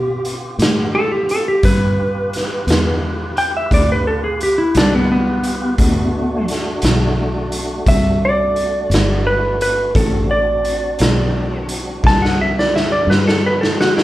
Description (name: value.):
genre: slow blues.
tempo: 58 BPM (dotted quarters).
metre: 12/8.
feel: straight.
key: D mixolydian.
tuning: A4 = 440 Hz.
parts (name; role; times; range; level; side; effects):
clean lap steel guitar; melody; 0.0-14.0 s; B3 to A5; -17 LUFS; equal; none.
tonewheel organ; sustained chords; 0.0-14.0 s; A3 to B4; -27 LUFS; equal; slow rotary speaker, overdrive, chorus vibrato.
fingered electric bass; bass; 0.0-14.0 s; G1 to B2; -20 LUFS; equal; none.
raw garage drum kit; drums; 0.2-14.0 s; hi-hat, kick drum, snare drum; -19 LUFS; equal; none.
room: moderate large studio reverb, RT60 0.9 s.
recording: band playing live in one room.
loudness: -14 LUFS.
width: side -15 dB against mid.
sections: 0.0-14.0 A section.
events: electric slide guitar solo 0.0-14.0; drum fill 12.0-14.0.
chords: 0.0 G7; 5.8 D7.